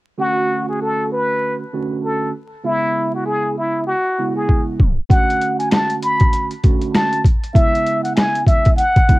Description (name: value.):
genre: hip hop, boom-bap hip-hop.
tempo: 98 BPM.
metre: 4/4.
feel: swing 59% on 16ths.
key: unclear.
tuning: A4 = 440 Hz.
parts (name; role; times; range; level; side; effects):
trumpet with plunger mute; melody; 0.2-9.2 s; E4 to B5; -18 LUFS; left 1 dB; high-pass filter, low-pass filter, cassette tape.
mellow tine electric piano; accompaniment; 0.2-9.2 s; C#3 to F#4; -23 LUFS; right 4 dB; high-pass filter, low-pass filter, cassette tape.
boom bap sampler-style drum kit; drums; 4.5-9.2 s; hi-hat, kick drum, rim click, snare drum; -14 LUFS; equal; cassette tape.
finger snaps; percussion; 5.7-8.3 s; none; -37 LUFS; left 11 dB; none.
room: light reverb.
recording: home recording on cassette, vinyl crackle, tape stop.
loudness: -15 LUFS.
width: side -19 dB against mid.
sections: 0.2-5.1 A section; 5.1-9.2 B section.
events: drum fill 4.5-5.1; tape stop 4.8-5.1.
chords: 0.2 Dmaj7; 2.7 C#m7; 5.1 Dmaj7; 7.6 C#m7.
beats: | 0.21 0.82 1.43 2.04 | 2.65 3.27 3.88 4.49 | 5.10 5.72 6.33 6.94 | 7.55 8.16 8.78.